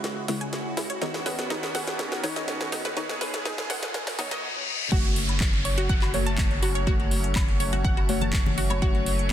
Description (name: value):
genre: progressive house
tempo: 123 BPM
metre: 4/4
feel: straight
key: F# dorian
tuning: A4 = 445 Hz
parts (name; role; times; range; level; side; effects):
- filtered supersaw swell; sustained chords; 0.0-9.3 s; C#2 to G#4; -35 LUFS; right 2 dB; sidechain pumping
- deep mellow chord stab; stabs; 0.0-9.3 s; C#3 to C#5; -34 LUFS; left 3 dB; chorus, phaser, sidechain pumping, ping-pong delay
- house drum kit; drums; 0.0-9.3 s; crash cymbal, handclaps, hi-hat, snare drum; -31 LUFS; equal; overdrive
- riser, reverse cymbal and downlifter; sound effects; 1.0-8.8 s; none; -35 LUFS; left 2 dB; none
- wide unison pluck; arpeggios; 0.3-8.9 s; D#4 to A6; -33 LUFS; equal; sidechain pumping, ping-pong delay
- round analog bass; bass; 4.9-9.3 s; F#1; -27 LUFS; equal; sidechain pumping
- electronic kick drum; drums; 4.9-8.9 s; none; -25 LUFS; equal; overdrive
- drifting glass-harmonics texture; texture; 5.7-9.3 s; C#5 to C#6; -38 LUFS; left 2 dB; chorus, built-in reverb, sidechain pumping
- woodblock and congas; percussion; 5.3-9.3 s; none; -35 LUFS; left 4 dB; sidechain pumping on perc
room: light reverb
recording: dense, heavily limited modern master, high-pass filter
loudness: -23 LUFS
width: side -11 dB against mid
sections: 0.0-4.9 A section; 4.9-9.3 B section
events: build-up 0.0-4.9; drum fill 0.0-4.4; filter sweep on synth pluck 0.0-4.9; filter sweep on synth stab 0.0-4.9; filter sweep on supersaw synth 0.0-4.9; filter sweep 0.0-4.9; reverse cymbal 3.9-4.9; drop 4.9-9.3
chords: 0.0 C#m; 1.0 Badd9/D#; 4.9 F#m